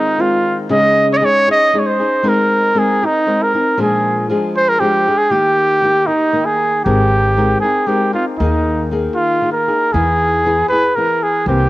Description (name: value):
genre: mexican folk, mariachi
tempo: 117 BPM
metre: 3/4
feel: straight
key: Ab major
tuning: A4 = 440 Hz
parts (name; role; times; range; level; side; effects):
- warm trumpet; melody; 0.0-11.7 s; Eb4 to Eb5; -14 LUFS; right 1 dB; cassette tape
- flamenco guitar; accompaniment; 0.0-11.7 s; Bb2 to Bb4; -19 LUFS; left 2 dB; cassette tape
- upright bass; bass; 6.9-11.7 s; Ab1 to E2; -18 LUFS; equal; transformer saturation
room: light reverb, small room ambience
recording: home recording on cassette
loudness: -12 LUFS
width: side -17 dB against mid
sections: 0.0-11.7 A section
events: none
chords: 0.0 Fm7; 0.7 Dbsus2; 2.3 Abadd9; 3.8 Bb7; 5.3 Eb; 6.9 Abadd9; 8.4 Ebsus4; 9.9 E